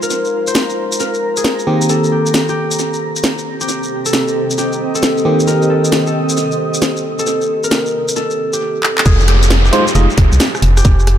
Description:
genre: UK garage, two-step garage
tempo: 134 BPM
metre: 4/4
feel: swing 66% on 16ths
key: unclear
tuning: A4 = 440 Hz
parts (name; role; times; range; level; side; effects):
- concert harp; melody; 0.0-11.2 s; G4 to C5; -19 LUFS; equal; vintage 12-bit sampler grit, dub echo
- FM electric piano; stabs; 0.0-10.1 s; Eb3 to Eb5; -19 LUFS; equal; chorus, tape echo
- garage drum kit; drums; 0.0-11.2 s; handclaps, hi-hat, rim click, shaker, snare drum; -18 LUFS; equal; studio reverb, tape echo
- granular cloud pad; texture; 0.0-11.2 s; C4 to Bb5; -22 LUFS; right 1 dB; built-in reverb, sidechain pumping
- organ-like FM bass; bass; 9.1-11.2 s; F1 to C2; -11 LUFS; equal; none
- electronic kick drum; drums; 9.1-11.0 s; none; -11 LUFS; equal; studio reverb
- downlifter; sound effects; 9.1-11.2 s; none; -20 LUFS; equal; none
room: light reverb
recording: echo-heavy mix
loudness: -12 LUFS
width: side -10 dB against mid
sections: 0.0-9.1 A section; 9.1-11.2 B section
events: drum fill 8.8; drop 9.1-11.2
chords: 0.0 Fm7; 1.7 Cm7; 9.1 Fm7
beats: | 0.10 0.55 1.00 1.45 | 1.89 2.34 2.79 3.24 | 3.69 4.13 4.58 5.03 | 5.48 5.92 6.37 6.82 | 7.27 7.71 8.16 8.61 | 9.06 9.51 9.95 10.40 | 10.85

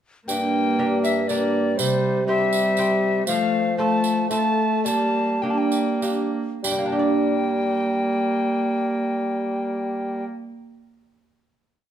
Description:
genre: classical, renaissance-style consort dance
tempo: 94-121 BPM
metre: 3/4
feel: straight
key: G dorian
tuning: A4 = 438 Hz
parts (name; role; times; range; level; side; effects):
- mellow hollow soprano recorder; melody; 0.3-10.2 s; C5 to A5; -25 LUFS; left 2 dB; none
- lute; accompaniment; 0.3-10.6 s; G2 to D5; -26 LUFS; right 2 dB; none
- rich viola; accompaniment; 0.3-10.2 s; G3 to Bb3; -25 LUFS; equal; none
- dark bassoon; bass; 0.3-10.2 s; G2 to A3; -26 LUFS; equal; none
- tambourine; percussion; 0.3-6.9 s; none; -31 LUFS; right 7 dB; none
room: moderate large studio reverb, RT60 1.4 s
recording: none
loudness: -20 LUFS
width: side -10 dB against mid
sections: 0.3-6.6 A section; 6.6-10.4 final chord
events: slowing down 2.5-6.6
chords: 0.3 Gm; 1.8 C; 3.3 F; 4.8 Gm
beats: | 0.28 0.78 1.28 | 1.78 2.27 2.77 | 3.27 3.78 4.30 | 4.85 5.42 6.01 | 6.63 7.27 7.90 | 8.54 9.17 9.80

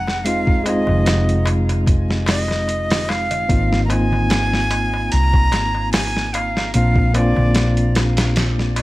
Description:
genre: trip hop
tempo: 74 BPM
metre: 4/4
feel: swing 54% on 16ths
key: F minor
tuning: A4 = 440 Hz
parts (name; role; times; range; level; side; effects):
- breathy bright jazz flute; melody; 0.0-8.8 s; D5 to Bb5; -23 LUFS; right 1 dB; tape echo
- tine electric piano; accompaniment; 0.0-8.8 s; F3 to F4; -22 LUFS; left 1 dB; harmonic tremolo, low-pass filter, tape echo
- hollow-body short-scale fingered electric bass; bass; 0.0-8.8 s; F1 to C2; -19 LUFS; equal; tube saturation
- boom bap sampler-style drum kit; drums; 0.1-8.8 s; hi-hat, kick drum, snare drum; -20 LUFS; equal; vintage 12-bit sampler grit, small room ambience
- darbuka; percussion; 0.1-8.8 s; none; -30 LUFS; left 1 dB; none
room: little or no reverb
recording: vinyl crackle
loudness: -15 LUFS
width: side -18 dB against mid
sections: 0.0-8.8 A section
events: break 8.4-8.8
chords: 0.0 Fm7; 3.5 Ab6; 6.7 Bbadd9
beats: | 0.25 1.06 1.87 2.69 | 3.50 4.31 5.12 5.93 | 6.74 7.55 8.36

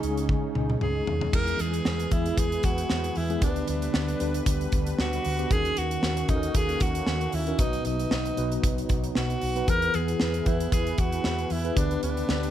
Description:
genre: 1980s-style pop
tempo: 115 BPM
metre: 4/4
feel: swing 55% on 16ths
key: unclear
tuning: A4 = 443 Hz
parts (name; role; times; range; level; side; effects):
- bright alto saxophone; melody; 0.0-12.5 s; D4 to A#4; -30 LUFS; right 1 dB; digital delay
- mellow tine electric piano; accompaniment; 0.0-12.5 s; B2 to B4; -31 LUFS; equal; medium stereo tremolo
- sweeping resonant pad; sustained chords; 0.0-12.5 s; C#3 to B4; -36 LUFS; right 1 dB; chorus
- mellow fretless electric bass; bass; 0.0-12.5 s; B1 to E2; -30 LUFS; equal; analog chorus
- modern studio drum kit; drums; 0.0-12.5 s; crash cymbal, hi-hat, kick drum, snare drum, toms; -28 LUFS; equal; none
room: light reverb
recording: none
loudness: -24 LUFS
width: side -11 dB against mid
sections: 0.0-1.3 A section; 1.3-12.5 B section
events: drum fill 0.3-1.3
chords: 0.0 C#sus2; 1.3 E; 3.4 G/D; 5.5 D#m7; 7.6 B; 9.7 E; 11.8 G/D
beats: 0.29 0.81 | 1.33 1.86 2.38 2.90 | 3.42 3.94 4.46 4.99 | 5.51 6.03 6.55 7.07 | 7.59 8.12 8.64 9.16 | 9.68 10.20 10.72 11.25 | 11.77 12.29

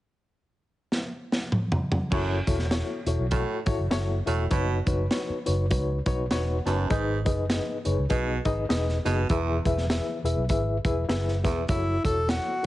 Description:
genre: uptempo 1960s-style soul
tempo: 100 BPM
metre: 4/4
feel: swing 59% on 8ths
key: F# dorian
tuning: A4 = 440 Hz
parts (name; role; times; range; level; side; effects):
- crunchy breakbeat drum kit; drums; 0.9-12.7 s; crash cymbal, hi-hat, kick drum, snare drum, toms; -28 LUFS; equal; none
- reed electric piano; accompaniment; 2.1-12.7 s; G#2 to A5; -29 LUFS; left 3 dB; fast tremolo
- clear baritone saxophone; riff; 2.1-11.6 s; E2 to B2; -32 LUFS; right 5 dB; none
- vintage muted fingered electric bass; bass; 2.1-12.4 s; E1 to C#2; -28 LUFS; equal; none
- breathy tenor saxophone; melody; 11.7-12.7 s; E4 to A4; -27 LUFS; left 1 dB; none
room: little or no reverb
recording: heavily compressed radio sound, nothing above 10.8 kHz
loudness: -24 LUFS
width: side -15 dB against mid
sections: 0.0-2.1 A section; 2.1-11.7 B section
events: drum fill 0.9-2.1; reed electric piano fill 6.0-6.9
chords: 0.0 N.C.; 2.1 F#m7; 4.5 Badd9/F#; 6.9 G#m; 9.3 E; 11.7 F#m7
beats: 0.32 0.92 1.52 | 2.12 2.72 3.32 3.91 | 4.51 5.11 5.71 6.31 | 6.91 7.50 8.10 8.70 | 9.30 9.90 10.50 11.10 | 11.69 12.29

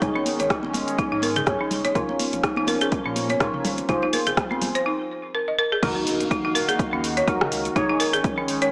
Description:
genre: afro house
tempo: 124 BPM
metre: 4/4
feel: swing 56% on 16ths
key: Eb dorian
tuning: A4 = 440 Hz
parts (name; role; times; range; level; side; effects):
- warm analog pad; sustained chords; 0.0-8.7 s; Eb3 to F5; -32 LUFS; equal; lush chorus, sidechain pumping
- deep mellow chord stab; stabs; 0.0-8.7 s; Eb4 to Db5; -31 LUFS; equal; chorus, sidechain pumping, tape echo
- warm sub bass; bass; 0.0-8.6 s; Eb1 to Bb2; -39 LUFS; equal; sidechain pumping
- afro-pop drum kit; drums; 0.0-8.7 s; crash cymbal, hi-hat, rim click, shaker, toms; -31 LUFS; equal; studio reverb
- electronic kick drum; drums; 0.0-8.4 s; none; -30 LUFS; equal; overdrive, studio reverb
- congas; percussion; 0.0-4.7 s; none; -34 LUFS; equal; none
- folk marimba with hard mallets; arpeggios; 0.2-8.7 s; C4 to Eb5; -27 LUFS; equal; sidechain pumping, tape echo
- impact; sound effects; 5.8-7.8 s; none; -39 LUFS; equal; none
room: moderate lush hall reverb, RT60 1.9 s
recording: small speaker sound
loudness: -23 LUFS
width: mono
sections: 0.0-5.8 A section; 5.8-8.7 B section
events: break 4.9-5.8; drop 5.8-8.7; impact 5.8-7.8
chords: 0.0 Absus4; 2.0 Bbm; 3.9 Fm; 5.8 Ebm; 7.8 Absus4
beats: | 0.02 0.50 0.99 1.47 | 1.95 2.44 2.92 3.41 | 3.89 4.37 4.86 5.34 | 5.83 6.31 6.79 7.28 | 7.76 8.24

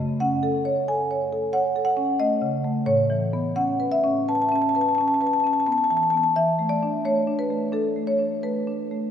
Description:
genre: classical, contemporary piece for solo marimba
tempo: 88 BPM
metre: 5/4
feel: rubato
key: unclear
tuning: A4 = 440 Hz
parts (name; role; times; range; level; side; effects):
- marimba with medium mallets; solo; 0.0-9.1 s; F#2 to A5; -20 LUFS; equal; none
room: wet cathedral reverb, RT60 4.3 s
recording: recorded in a church or concert hall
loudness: -20 LUFS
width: side -8 dB against mid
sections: 0.0-9.1 A section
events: none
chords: 0.0 F#m6; 2.9 Aadd9; 6.4 E7sus4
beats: 0.20 0.88 1.54 2.21 | 2.89 3.57 4.29 4.98 5.68 | 6.35 7.03 7.72 8.42

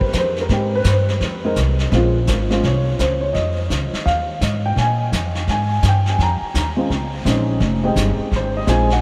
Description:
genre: jazz piano trio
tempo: 169 BPM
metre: 4/4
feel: swing 64% on 8ths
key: F minor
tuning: A4 = 440 Hz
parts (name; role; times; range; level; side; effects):
- dark upright piano; melody; 0.0-9.0 s; Ab3 to Bb5; -23 LUFS; equal; lush chorus, tape echo
- upright bass; bass; 0.0-9.0 s; F1 to Bb2; -21 LUFS; equal; none
- vintage brush drum kit; drums; 0.0-9.0 s; brushed snare drum, hi-hat, kick drum, snare drum; -27 LUFS; equal; none
room: moderate huge ambient reverb, RT60 7.5 s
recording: dreamy mix soaked in reverb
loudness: -19 LUFS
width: mono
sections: 0.0-9.0 A section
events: none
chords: 0.0 Fm; 1.9 Bbm7; 3.4 Fm7; 4.8 Bbm7; 7.6 Fm7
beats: 0.15 | 0.51 0.87 1.22 1.58 | 1.93 2.29 2.64 3.00 | 3.35 3.71 4.06 4.42 | 4.77 5.13 5.48 5.84 | 6.20 6.55 6.91 7.26 | 7.62 7.97 8.32 8.68

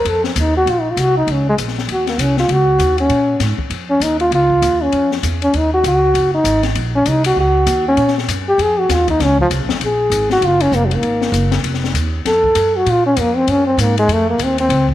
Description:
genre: jazz, small-group swing and bop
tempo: 197 BPM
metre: 4/4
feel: swing 61% on 8ths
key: Bb minor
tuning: A4 = 445 Hz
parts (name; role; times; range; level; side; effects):
- mellow trombone; melody; 0.0-14.9 s; F3 to Bb4; -14 LUFS; equal; none
- upright bass; bass; 0.0-14.9 s; F1 to Bb2; -19 LUFS; right 1 dB; none
- open jazz drum kit; drums; 0.1-14.9 s; hi-hat, kick drum, ride cymbal, snare drum; -23 LUFS; left 8 dB; none
room: moderate echo chamber reverb, RT60 1.6 s, small room ambience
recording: 1960s-style stereo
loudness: -13 LUFS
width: side -13 dB against mid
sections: 0.7-14.9 A section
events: trombone solo 0.0-14.9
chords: 0.0 Ebsus2; 0.7 Bbm; 1.9 Ebm7; 3.1 Bbm7; 5.5 Ebm7; 8.0 Bbm7; 10.4 Gbmaj7; 11.6 F7b9; 12.9 Bb5; 14.1 F5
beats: 0.05 0.36 | 0.66 0.97 1.27 1.57 | 1.88 2.18 2.49 2.79 | 3.10 3.40 3.71 4.01 | 4.32 4.62 4.92 5.23 | 5.53 5.84 6.14 6.45 | 6.75 7.06 7.36 7.67 | 7.97 8.28 8.58 8.89 | 9.19 9.50 9.80 10.11 | 10.42 10.72 11.03 11.33 | 11.64 11.94 12.25 12.55 | 12.86 13.17 13.47 13.78 | 14.08 14.39 14.69

